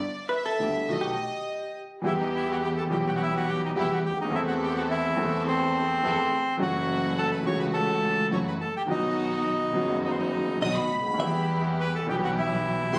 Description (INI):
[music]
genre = tango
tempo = 104 BPM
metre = 4/4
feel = rubato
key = E harmonic minor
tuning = A4 = 440 Hz
[part]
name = warm studio violin section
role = second line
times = 0.0-1.8, 10.6-13.0 s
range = D5 to D#6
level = -34 LUFS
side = equal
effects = none
[part]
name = vintage hollow-body jazz guitar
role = second line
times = 0.3-2.0, 10.6-11.6 s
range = G4 to E5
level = -33 LUFS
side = equal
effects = none
[part]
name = warm concert grand piano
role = accompaniment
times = 0.6-13.0 s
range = F#1 to A4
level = -31 LUFS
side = equal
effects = none
[part]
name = warm symphonic string section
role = stabs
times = 0.6-13.0 s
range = A3 to A4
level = -38 LUFS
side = equal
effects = none
[part]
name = rich double bass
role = bass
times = 0.6-13.0 s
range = F#1 to E2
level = -35 LUFS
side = equal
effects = none
[part]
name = bandoneon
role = melody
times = 2.1-13.0 s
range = C4 to C#6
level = -31 LUFS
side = equal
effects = none
[sound]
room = moderate large studio reverb, RT60 1.2 s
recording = recorded on a phone in the room, club reverb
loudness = -27 LUFS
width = mono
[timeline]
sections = 0.0-2.0 A section; 2.0-13.0 B section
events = violin section solo 0.0-2.0; break 1.5-2.0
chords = 0.0 G6; 0.9 B7; 2.0 Em; 4.3 Am/E; 6.6 F#m7; 8.9 B; 11.2 Em